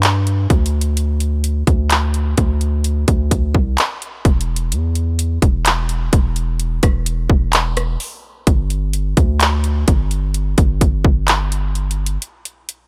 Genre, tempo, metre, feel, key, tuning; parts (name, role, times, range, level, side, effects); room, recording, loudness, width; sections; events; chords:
contemporary R&B; 64 BPM; 4/4; straight; A4 = 440 Hz
long sustained 808-style bass; bass; 0.0-12.2 s; E1 to G2; -20 LUFS; equal
trap drum kit; drums; 0.0-12.9 s; handclaps, hi-hat, kick drum, rim click; -18 LUFS; equal
little or no reverb; bright 1980s-style digital production, faint mains hum; -17 LUFS; mono
0.0-8.5 A section; 8.5-12.9 B section